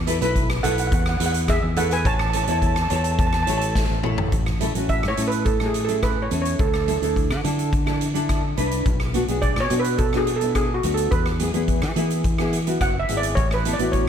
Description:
calypso; 106 BPM; 4/4; straight; A major; A4 = 438 Hz
fingered electric bass; bass; 0.0-14.1 s; F#1 to E3; -25 LUFS; equal
nylon-string guitar; accompaniment; 0.1-14.1 s; B3 to C#5; -26 LUFS; equal; double-tracked left and right, slapback echo
street-band drum kit; drums; 0.1-14.1 s; hi-hat, kick drum, rim click, snare drum, toms; -24 LUFS; equal
steel pan; melody; 0.6-14.0 s; F#4 to A5; -25 LUFS; right 3 dB; slapback echo
light reverb, small room ambience; -19 LUFS; side -8 dB against mid
0.0-4.3 A section; 4.3-14.1 B section
drum fill 3.8-4.3; steel pan solo 4.3-14.1
0.0 Esus4; 0.9 E; 2.1 A; 6.6 Dsus2; 8.9 Bm; 11.1 E; 13.4 Asus2

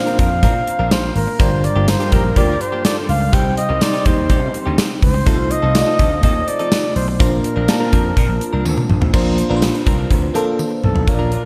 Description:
1980s-style pop; 124 BPM; 4/4; straight; Bb major; A4 = 440 Hz
warm flugelhorn; melody; 0.0-11.5 s; A4 to G5; -24 LUFS; equal; analog delay
FM electric piano; accompaniment; 0.0-11.5 s; G2 to A5; -24 LUFS; equal; chorus, phaser
direct-recorded clean electric guitar; riff; 0.1-11.4 s; F3 to Bb4; -30 LUFS; equal; subtle chorus, analog delay
gated 80s drum kit; drums; 0.1-11.4 s; crash cymbal, hi-hat, kick drum, snare drum, tambourine, toms; -19 LUFS; equal
vintage slap bass; bass; 0.2-11.3 s; G1 to C3; -22 LUFS; equal
tambourine; percussion; 0.9-10.7 s; -39 LUFS; equal
mellow synth brass; stabs; 1.8-4.5 s; C4 to C5; -30 LUFS; equal; chorus, analog delay
moderate lush hall reverb, RT60 1.8 s, small room ambience; dreamy mix soaked in reverb; -16 LUFS; mono
0.0-9.1 A section; 9.1-11.1 B section
drum fill 8.7-9.1, 10.6-11.1
0.0 Bbadd9; 1.4 Gm7; 3.3 Cm; 5.3 F7/C; 7.2 Bbadd9

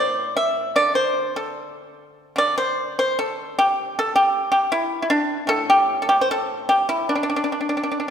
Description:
chinese traditional, Chinese solo plucked strings; 76 BPM; 2/4; rubato; D shang mode; A4 = 440 Hz
pipa; solo; 0.0-8.1 s; A2 to E5; -18 LUFS; equal
wet concert hall reverb, RT60 2.2 s; recorded in a church or concert hall; -18 LUFS; side -8 dB against mid
0.0-8.1 A section

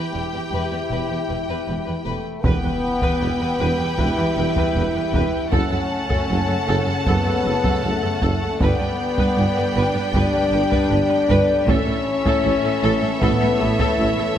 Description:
cinematic, epic orchestral film score; 78 BPM; 4/4; straight; E dorian; A4 = 439 Hz
clear symphonic violin section; melody; 0.0-14.4 s; E5 to A5; -30 LUFS; left 2 dB
rich chamber violin section; second line; 0.0-14.4 s; B4 to F#5; -31 LUFS; equal
clear symphonic viola section; accompaniment; 0.0-14.3 s; G4 to B4; -29 LUFS; right 1 dB
warm French horn section; sustained chords; 0.0-14.4 s; A3 to E4; -23 LUFS; left 3 dB
rich symphonic cello section; bass; 0.1-14.2 s; E2 to A2; -26 LUFS; right 2 dB
rich symphonic double bass section; bass; 0.1-14.1 s; E1 to A1; -27 LUFS; right 2 dB
clear symphonic string section; sustained chords; 2.4-14.4 s; A3 to G5; -29 LUFS; equal
warm trombone section; sustained chords; 2.4-14.4 s; C#3 to A3; -29 LUFS; right 1 dB
mellow tuba; bass; 2.4-14.1 s; E1 to A1; -28 LUFS; right 3 dB
solo taiko drums; drums; 2.4-14.4 s; -25 LUFS; equal
impact; sound effects; 2.4-5.5 s; -35 LUFS; equal
wet scoring stage reverb, RT60 1.9 s; -18 LUFS; side -10 dB against mid
0.0-2.4 A section; 2.4-14.4 A section
impact 2.4-5.5
0.0 Em; 5.5 F#m; 8.6 G; 11.7 A

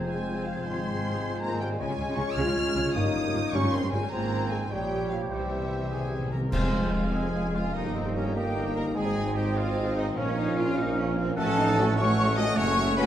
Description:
classical, dramatic, fast romantic movement for symphony orchestra; 100 BPM (dotted quarters); 6/8; straight; F minor; A4 = 438 Hz
mellow oboe; second line; 0.0-13.0 s; C5 to F#5; -38 LUFS; equal
mellow small flute group; second line; 0.0-13.1 s; C5 to Ab6; -37 LUFS; left 1 dB
warm clarinet; second line; 0.0-13.0 s; C4 to G4; -39 LUFS; left 2 dB
warm symphonic violin section; second line; 0.0-13.1 s; F4 to D#6; -39 LUFS; left 2 dB
warm bassoon; accompaniment; 0.0-12.9 s; G3 to C4; -36 LUFS; right 1 dB
warm symphonic viola section; accompaniment; 0.0-13.1 s; G3 to C5; -36 LUFS; right 1 dB
mellow French horn section; sustained chords; 0.0-13.0 s; E3 to F#4; -34 LUFS; left 2 dB
concert harp; arpeggios; 0.0-13.1 s; F2 to Eb6; -37 LUFS; left 5 dB
rich symphonic cello section; bass; 0.0-13.1 s; F2 to F4; -33 LUFS; right 2 dB
warm symphonic double bass section; bass; 0.0-13.1 s; F1 to F2; -34 LUFS; right 2 dB
warm symphonic violin section; melody; 0.1-13.1 s; A4 to F6; -37 LUFS; left 1 dB
timpani; percussion; 5.3-6.5 s; C3; -35 LUFS; left 1 dB
bright trumpet section; stabs; 5.9-13.1 s; C4 to D#5; -33 LUFS; right 1 dB
warm tuba; bass; 6.5-13.1 s; F1 to Bb1; -33 LUFS; right 3 dB
clash cymbals and concert bass drum; percussion; 6.5-7.3 s; -34 LUFS; equal
wet recital hall reverb, RT60 1.5 s; dark, warm production; -25 LUFS; side -11 dB against mid
0.0-6.5 A section; 6.5-13.1 B section
timpani fill 5.3-6.5; band accent 6.5-6.9
0.0 Fm; 0.7 Fm/Ab; 1.8 Db; 3.0 Gm7b5; 4.1 Fm/Ab; 4.7 Gdim/Bb; 5.3 C; 6.5 Fm; 7.7 Eb/G; 9.0 Ab; 10.2 Bbm; 11.4 F#m/A

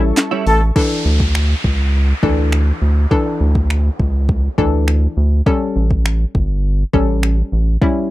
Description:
dance-pop; 102 BPM; 4/4; straight; A4 = 440 Hz
hollow square pluck; accompaniment; 0.0-8.1 s; E3 to A4; -19 LUFS; left 2 dB; chorus, sidechain pumping
filtered supersaw swell; sustained chords; 0.0-0.7 s; A4 to C#6; -31 LUFS; right 1 dB; sidechain pumping
direct-recorded clean electric guitar; riff; 0.0-0.6 s; G3 to E4; -20 LUFS; right 7 dB; analog chorus
round analog bass; bass; 0.0-7.8 s; G1 to D2; -14 LUFS; equal; sidechain pumping
smooth R&B drum kit; drums; 0.2-8.0 s; crash cymbal, finger snaps, handclaps, hi-hat, kick drum, snare drum; -18 LUFS; equal; overdrive
warm horn section; melody; 0.5-0.6 s; A3 to A4; -17 LUFS; left 1 dB; sidechain pumping
downlifter; sound effects; 0.8-5.5 s; -28 LUFS; equal
little or no reverb; dry, close 1970s-style studio recording; -13 LUFS; side -17 dB against mid
0.8-8.1 A section
0.0 A7; 0.8 Dsus2; 5.5 A7

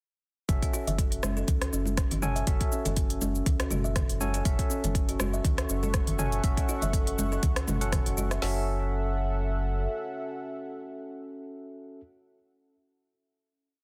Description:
afro house; 121 BPM; 4/4; swing 55% on 16ths; F# minor; A4 = 439 Hz
barky tine electric piano; stabs; 0.5-12.0 s; C#4 to G#5; -39 LUFS; equal; sidechain pumping, tape echo
round analog bass; bass; 0.5-9.9 s; F#1 to C#2; -33 LUFS; equal; sidechain pumping
deep house drum kit; drums; 0.5-8.5 s; hi-hat, kick drum, snare drum; -30 LUFS; equal
deep house drum kit; drums; 0.5-8.4 s; hi-hat, rim click, shaker, toms; -36 LUFS; equal
kalimba; arpeggios; 0.6-8.7 s; C#4 to E5; -39 LUFS; equal; sidechain pumping, tape echo
congas; percussion; 0.9-8.3 s; -39 LUFS; equal
warm analog pad; sustained chords; 4.5-12.0 s; C#4 to C#6; -41 LUFS; equal; chorus, sidechain pumping
digital ambience; dense, heavily limited modern master; -28 LUFS; mono
0.5-8.4 drop; 8.4-12.4 final chord
drop 0.5-8.4
0.5 F#m7

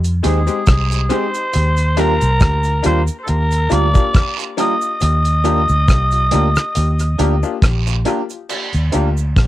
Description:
lovers rock reggae; 69 BPM; 4/4; swing 55% on 16ths; Eb major; A4 = 435 Hz
vintage muted fingered electric bass; bass; 0.0-9.5 s; Bb1 to F2; -16 LUFS; equal
damped 70s drum kit; drums; 0.0-9.5 s; crash cymbal, hi-hat, kick drum, rim click; -17 LUFS; equal; cassette tape, analog delay
cabasa and guiro; percussion; 0.0-9.5 s; -30 LUFS; right 12 dB
bright grand piano; accompaniment; 0.2-9.1 s; Ab3 to G4; -23 LUFS; left 9 dB; cassette tape, analog delay
electric guitar through a small old amp; stabs; 0.2-9.1 s; G3 to C5; -21 LUFS; right 11 dB; cassette tape
raspy tenor saxophone; melody; 0.3-7.6 s; Ab4 to Eb5; -19 LUFS; equal; cassette tape, tape echo
little or no reverb; home recording on cassette; -14 LUFS; side -14 dB against mid
0.0-8.5 A section
0.0 Fm7; 1.5 Ebmaj9; 5.0 Ebmaj7

